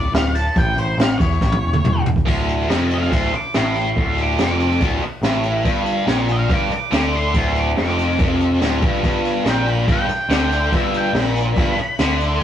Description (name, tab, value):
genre	blues rock power trio and southern rock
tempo	142 BPM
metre	4/4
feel	straight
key	unclear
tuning	A4 = 440 Hz
part	octave-fuzz lead guitar	melody	0.0-12.4 s	C5 to D6	-24 LUFS	equal	distortion
part	growling picked electric bass	bass	0.0-12.4 s	D1 to E2	-22 LUFS	equal	overdrive
part	jazz brush drum kit	drums	0.1-12.4 s	crash cymbal, kick drum, ride cymbal, snare drum, toms	-20 LUFS	equal	none
part	tight distorted guitar	riff	2.3-12.4 s	D2 to D3	-20 LUFS	equal	distortion
room	moderate studio reverb, RT60 0.6 s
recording	rough rehearsal-room recording, tube saturation, cassette tape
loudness	-16 LUFS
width	side -10 dB against mid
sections	0.0-2.3 A section; 2.3-12.4 B section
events	lead electric guitar solo 0.0-2.3; drum fill 1.4-2.3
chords	0.0 D5; 0.6 A; 2.3 D5; 5.7 G5; 7.3 Dmadd11; 9.0 Gm